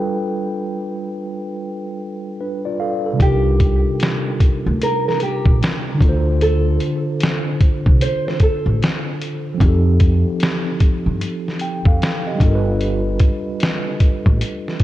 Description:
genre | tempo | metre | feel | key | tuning
lo-fi hip hop | 75 BPM | 4/4 | swing 64% on 16ths | C dorian | A4 = 440 Hz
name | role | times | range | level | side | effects
mellow tine electric piano | accompaniment | 0.0-14.8 s | C3 to G5 | -22 LUFS | equal | medium stereo tremolo, cassette tape, low-pass filter
nylon-string guitar | melody | 3.2-9.6 s | G4 to C5 | -23 LUFS | right 1 dB | low-pass filter, tape echo
upright bass | bass | 3.2-14.4 s | G1 to G2 | -18 LUFS | equal | none
lo-fi sampler-style drum kit | drums | 3.2-14.8 s | hi-hat, kick drum, snare drum | -17 LUFS | equal | none
room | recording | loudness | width
light reverb, digital ambience | cassette tape | -16 LUFS | side -14 dB against mid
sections
0.0-3.2 A section; 3.2-14.8 B section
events
none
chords
0.0 G9; 3.2 Cm11; 6.0 Dm7; 9.6 F9; 12.4 G9

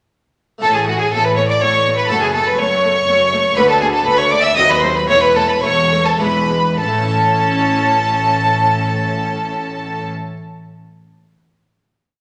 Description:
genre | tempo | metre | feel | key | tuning
classical, baroque-style concerto movement with solo episodes | 99-123 BPM | 3/4 | straight | A major | A4 = 440 Hz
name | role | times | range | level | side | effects
clear studio violin section | melody | 0.6-10.1 s | F#5 to E6 | -22 LUFS | equal | none
rich violin | melody | 0.6-10.1 s | F#4 to A5 | -18 LUFS | equal | none
rich chamber violin section | second line | 0.6-10.1 s | F#4 to E5 | -25 LUFS | equal | none
clear studio viola section | accompaniment | 0.6-10.1 s | F#3 to C#4 | -28 LUFS | equal | none
harpsichord | accompaniment | 0.6-10.4 s | D2 to C#5 | -30 LUFS | equal | none
rich chamber double bass section | bass | 0.6-10.1 s | E1 to D#2 | -27 LUFS | equal | none
warm symphonic cello section | bass | 0.6-10.1 s | D2 to A2 | -27 LUFS | equal | none
room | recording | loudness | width
wet recital hall reverb, RT60 1.5 s | none | -15 LUFS | mono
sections
0.6-6.8 ritornello; 6.8-10.4 final chord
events
slowing down 2.8-6.8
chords
0.6 A; 2.1 F#m; 3.6 Dmaj13; 4.6 D#dim7; 5.1 A/E; 6.2 E7; 6.8 A

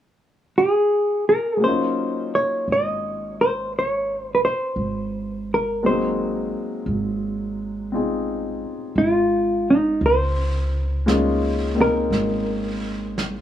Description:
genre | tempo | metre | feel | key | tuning
jazz ballad | 57 BPM | 4/4 | swing 66% on 8ths | Db major | A4 = 438 Hz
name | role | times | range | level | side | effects
hollow-body jazz guitar | melody | 0.6-13.4 s | Eb4 to Eb5 | -20 LUFS | equal | none
warm grand piano | accompaniment | 1.6-13.4 s | Gb3 to Ab4 | -24 LUFS | left 2 dB | none
upright bass | bass | 2.7-13.4 s | Ab1 to Db2 | -26 LUFS | right 1 dB | none
jazz brush drum kit | drums | 10.0-13.4 s | brushed snare drum, hi-hat, snare drum | -31 LUFS | right 3 dB | none
room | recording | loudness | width
little or no reverb | small room ambience | -19 LUFS | side -11 dB against mid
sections
0.0-1.6 A section; 1.6-10.0 B section; 10.0-13.4 C section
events
none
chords
0.0 N.C.; 1.6 Ebm9; 5.8 Ab9; 10.0 Db69

